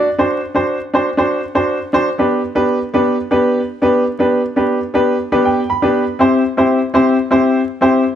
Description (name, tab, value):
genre	soul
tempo	120 BPM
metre	4/4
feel	straight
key	G major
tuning	A4 = 440 Hz
part	warm upright piano	solo	0.0-8.0 s	B3 to B5	-13 LUFS	equal	none
room	moderate stone room reverb, RT60 1.1 s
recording	band playing live in one room, vinyl crackle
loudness	-13 LUFS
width	side -10 dB against mid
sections	0.0-2.2 A section; 2.2-8.2 B section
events	upright piano fill 5.2-6.2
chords	0.0 D7; 2.2 G; 6.2 C